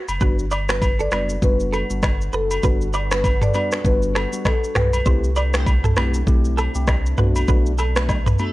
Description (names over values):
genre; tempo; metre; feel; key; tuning
afrobeats; 99 BPM; 4/4; swing 58% on 16ths; G major; A4 = 441 Hz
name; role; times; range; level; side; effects
direct-recorded clean electric guitar; riff; 0.0-8.5 s; G4 to D5; -28 LUFS; right 4 dB; ensemble chorus, analog delay
saturated sub bass; bass; 0.1-8.4 s; F#1 to C2; -22 LUFS; equal; none
afro-pop drum kit; drums; 0.1-8.5 s; finger snaps, kick drum, rim click, shaker, toms; -20 LUFS; equal; none
agogo bells and woodblock; percussion; 0.1-8.5 s; none; -29 LUFS; left 1 dB; none
tine electric piano; accompaniment; 0.2-8.5 s; G3 to G4; -27 LUFS; left 2 dB; phaser
deep dark ambient pad; sustained chords; 1.0-8.5 s; G3 to B4; -34 LUFS; right 1 dB; chorus, built-in reverb
marimba with medium mallets; melody; 0.7-4.9 s; A4 to D5; -25 LUFS; left 1 dB; none
room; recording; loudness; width
digital ambience; dry, gritty hardware recording, cassette tape; -17 LUFS; side -18 dB against mid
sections
0.2-8.5 A section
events
none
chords
0.2 Gmaj7; 5.1 C6; 7.2 Bm7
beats
| 0.21 0.82 1.42 2.03 | 2.63 3.24 3.85 4.45 | 5.06 5.67 6.27 6.88 | 7.48 8.09